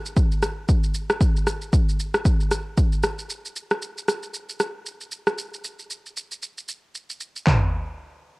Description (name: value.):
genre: amapiano.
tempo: 115 BPM.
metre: 4/4.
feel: swing 58% on 16ths.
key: none.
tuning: none.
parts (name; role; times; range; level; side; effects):
deep house drum kit; drums; 0.1-7.6 s; handclaps, kick drum, rim click, shaker, toms; -21 LUFS; equal; overdrive.
room: little or no reverb.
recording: home recording on cassette.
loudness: -21 LUFS.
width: side -25 dB against mid.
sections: 0.0-7.5 A section.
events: none.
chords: none.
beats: 0.16 0.69 | 1.21 1.73 2.25 2.77 | 3.29 3.82 4.34 4.86 | 5.38 5.90 6.42 6.95 | 7.47.